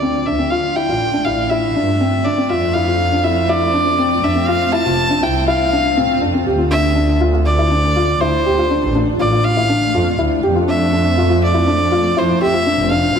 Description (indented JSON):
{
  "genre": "piano and strings electronica",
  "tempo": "121 BPM",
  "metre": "4/4",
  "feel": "straight",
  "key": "D minor",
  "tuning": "A4 = 442 Hz",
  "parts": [
    { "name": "rich violin", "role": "melody", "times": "0.0-13.2 s", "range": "C5 to A5", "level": "-18 LUFS", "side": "right 1 dB", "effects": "low-pass filter, ping-pong delay" },
    { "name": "granular cloud pad", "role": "sustained chords", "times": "0.0-13.2 s", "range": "A3 to D5", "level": "-23 LUFS", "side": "right 1 dB", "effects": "built-in reverb" },
    { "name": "felt-muted upright piano", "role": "riff", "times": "0.0-13.2 s", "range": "C4 to G4", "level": "-18 LUFS", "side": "left 3 dB", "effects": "ping-pong delay" },
    { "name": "rich chamber double bass section", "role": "bass", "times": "0.0-13.2 s", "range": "F1 to A2", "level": "-19 LUFS", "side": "right 1 dB", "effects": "none" }
  ],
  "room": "moderate lush hall reverb, RT60 2.3 s",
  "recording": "none",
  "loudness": "-13 LUFS",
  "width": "side -7 dB against mid",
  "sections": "0.0-6.5 A section; 6.5-13.2 B section",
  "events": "build-up 0.0-6.5; drop 6.5-13.2",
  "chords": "0.0 Dmadd9; 2.5 F; 6.5 Dmadd9; 10.4 F"
}